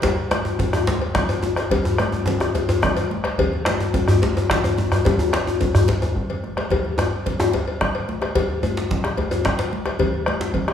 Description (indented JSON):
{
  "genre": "west african traditional, West African drum ensemble",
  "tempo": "145 BPM (dotted quarters)",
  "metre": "12/8",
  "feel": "straight",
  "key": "none",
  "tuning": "none",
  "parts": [
    { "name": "bombo", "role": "percussion", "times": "0.0-10.7 s", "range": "none", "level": "-24 LUFS", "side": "equal", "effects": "none" },
    { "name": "congas", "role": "percussion", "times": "0.0-10.7 s", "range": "none", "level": "-28 LUFS", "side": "right 1 dB", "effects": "none" },
    { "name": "cowbell", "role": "percussion", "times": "0.0-10.7 s", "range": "none", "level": "-28 LUFS", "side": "left 2 dB", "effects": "none" },
    { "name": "djembe", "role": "percussion", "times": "0.0-10.7 s", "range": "none", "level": "-27 LUFS", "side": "left 3 dB", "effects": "none" },
    { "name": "djembe", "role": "percussion", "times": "0.0-10.5 s", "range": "none", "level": "-21 LUFS", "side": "left 1 dB", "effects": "none" }
  ],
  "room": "wet recital hall reverb, RT60 1.5 s",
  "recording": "recorded in a church or concert hall, small room ambience",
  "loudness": "-18 LUFS",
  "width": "side -9 dB against mid",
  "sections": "0.0-10.7 A section",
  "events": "speeding up 0.0-10.7; drum fill 6.3-6.7",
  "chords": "none",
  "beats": "| 0.03 0.45 0.87 1.29 | 1.71 2.13 2.55 2.97 | 3.39 3.80 4.22 4.64 | 5.05 5.47 5.88 6.30 | 6.71 7.12 7.54 7.95 | 8.36 8.77 9.18 9.59 | 10.00 10.41"
}